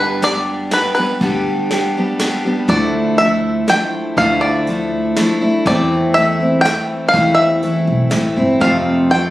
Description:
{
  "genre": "acoustic folk duo or small band",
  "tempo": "122 BPM",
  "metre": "3/4",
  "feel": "straight",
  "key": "unclear",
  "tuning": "A4 = 440 Hz",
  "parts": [
    { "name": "bluegrass banjo", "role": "melody", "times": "0.0-9.3 s", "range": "B4 to G5", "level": "-16 LUFS", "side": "equal", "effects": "none" },
    { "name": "picked steel-string acoustic guitar", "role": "accompaniment", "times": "0.0-9.3 s", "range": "F2 to G4", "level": "-16 LUFS", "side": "equal", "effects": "none" },
    { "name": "upright bass", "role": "bass", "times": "0.0-9.3 s", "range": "G1 to F2", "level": "-21 LUFS", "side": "right 1 dB", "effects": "none" },
    { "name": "soft brush drum kit", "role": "drums", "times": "0.2-9.2 s", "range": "hi-hat, kick drum, ride cymbal, snare drum", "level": "-25 LUFS", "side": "right 1 dB", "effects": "none" }
  ],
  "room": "moderate studio reverb, RT60 0.6 s",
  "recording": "recorded on a phone in the room, studio reverb, compression",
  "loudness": "-13 LUFS",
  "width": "side -15 dB against mid",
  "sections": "0.0-2.7 A section; 2.7-9.3 B section",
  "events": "none",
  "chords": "0.0 G; 2.7 Dmadd9; 5.7 Am/E; 8.6 F"
}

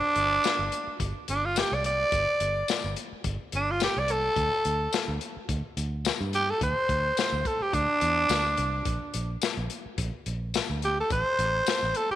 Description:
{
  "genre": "straight-eighth soul blues",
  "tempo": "107 BPM",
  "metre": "4/4",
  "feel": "swing 54% on 16ths",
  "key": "unclear",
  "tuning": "A4 = 441 Hz",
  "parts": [
    { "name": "growling tenor saxophone", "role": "melody", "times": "0.0-12.2 s", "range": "D4 to D5", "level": "-26 LUFS", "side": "right 1 dB", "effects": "none" },
    { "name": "fingered electric bass", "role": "bass", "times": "0.2-12.1 s", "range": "G1 to G2", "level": "-32 LUFS", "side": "right 1 dB", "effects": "none" },
    { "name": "crunchy breakbeat drum kit", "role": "drums", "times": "0.2-12.1 s", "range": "hi-hat, kick drum, snare drum, tambourine", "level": "-31 LUFS", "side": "left 6 dB", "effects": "none" }
  ],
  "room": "light reverb, small room ambience",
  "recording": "1960s-style stereo",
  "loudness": "-25 LUFS",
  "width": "side -12 dB against mid",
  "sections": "0.0-12.2 A section",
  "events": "none",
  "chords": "0.0 G5; 4.4 D5; 8.9 Bb; 11.1 N.C."
}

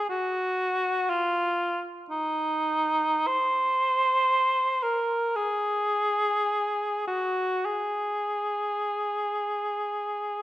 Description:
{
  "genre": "classical, free, expressive piece for unaccompanied cor anglais",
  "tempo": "free time",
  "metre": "none",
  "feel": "none",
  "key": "unclear",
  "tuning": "A4 = 440 Hz",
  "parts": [
    { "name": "warm cor anglais", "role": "solo", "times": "0.0-10.4 s", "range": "Eb4 to C5", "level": "-24 LUFS", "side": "equal", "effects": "none" }
  ],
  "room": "moderate recital hall reverb, RT60 1.5 s",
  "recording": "none",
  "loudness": "-24 LUFS",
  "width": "side -14 dB against mid",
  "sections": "0.0-10.4 A section",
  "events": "none",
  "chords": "none"
}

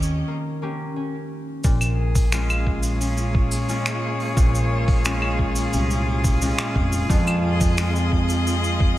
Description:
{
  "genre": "folktronica",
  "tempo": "88 BPM",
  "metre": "4/4",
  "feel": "straight",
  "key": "Bb dorian",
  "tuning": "A4 = 437 Hz",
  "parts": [
    { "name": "clear string quartet", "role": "sustained chords", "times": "0.0-9.0 s", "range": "Eb3 to Eb5", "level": "-28 LUFS", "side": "equal", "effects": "none" },
    { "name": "concert harp", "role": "arpeggios", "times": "0.0-9.0 s", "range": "F2 to G4", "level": "-25 LUFS", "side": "left 1 dB", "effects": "tape echo" },
    { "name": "upright bass", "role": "bass", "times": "0.0-9.0 s", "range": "F1 to F2", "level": "-23 LUFS", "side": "equal", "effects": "none" },
    { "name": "vintage brush drum kit", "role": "drums", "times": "0.0-8.8 s", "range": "cabasa, claves, finger snaps, hi-hat", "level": "-29 LUFS", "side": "equal", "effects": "none" },
    { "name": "electronic kick drum", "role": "drums", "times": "1.6-8.9 s", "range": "none", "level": "-21 LUFS", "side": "equal", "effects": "none" }
  ],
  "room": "light reverb",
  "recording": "none",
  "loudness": "-19 LUFS",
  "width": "side -15 dB against mid",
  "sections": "0.0-1.6 A section; 1.6-9.0 B section",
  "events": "break 0.3-1.6",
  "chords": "0.0 Eb7; 1.6 Bbm7; 7.1 Fm7"
}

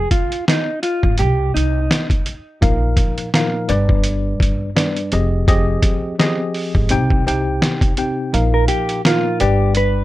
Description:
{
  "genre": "hip hop, boom-bap hip-hop",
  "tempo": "84 BPM",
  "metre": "4/4",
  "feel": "swing 56% on 16ths",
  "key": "C minor",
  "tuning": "A4 = 440 Hz",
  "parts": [
    { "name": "mellow electric guitar", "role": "melody", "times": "0.0-2.1, 8.5-10.0 s", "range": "Eb4 to B4", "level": "-20 LUFS", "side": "right 1 dB", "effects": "wide subtle chorus, high-pass filter, low-pass filter, digital delay" },
    { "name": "upright bass", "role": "bass", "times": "0.0-10.0 s", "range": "F1 to C2", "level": "-19 LUFS", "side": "equal", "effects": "none" },
    { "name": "trip hop sampler-style drum kit", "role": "drums", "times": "0.1-9.9 s", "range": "hi-hat, kick drum, snare drum", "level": "-17 LUFS", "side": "equal", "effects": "none" },
    { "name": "mellow tine electric piano", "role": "accompaniment", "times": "2.6-10.0 s", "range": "G2 to G5", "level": "-20 LUFS", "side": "left 1 dB", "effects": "medium stereo tremolo, cassette tape, high-pass filter, low-pass filter" }
  ],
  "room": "little or no reverb",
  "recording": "none",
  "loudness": "-15 LUFS",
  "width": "side -16 dB against mid",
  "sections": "0.0-10.0 A section",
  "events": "break 0.0-2.6; kick muted 8.3-9.8",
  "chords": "0.0 Fm; 1.2 Cm; 2.6 Bbsus4; 3.7 G; 5.1 Fm7; 6.9 Cm; 8.3 Bbsus4; 9.4 G"
}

